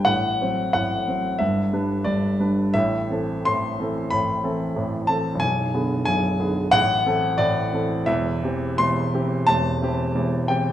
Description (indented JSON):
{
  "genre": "classical, romantic character piece for solo piano",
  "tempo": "90 BPM",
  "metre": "4/4",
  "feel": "uneven beats, rubato",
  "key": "unclear",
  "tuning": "A4 = 443 Hz",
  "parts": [
    { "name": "warm baby grand piano", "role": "solo", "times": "0.0-10.7 s", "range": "B0 to C6", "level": "-20 LUFS", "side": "equal", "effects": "none" }
  ],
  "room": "wet recital hall reverb, RT60 1.6 s",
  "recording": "none",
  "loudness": "-20 LUFS",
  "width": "side -11 dB against mid",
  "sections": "0.0-10.7 A section",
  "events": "none",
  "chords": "0.1 F#dim/A; 1.4 G; 2.8 Am; 5.4 G#dim/B; 6.7 Am; 8.1 C/E"
}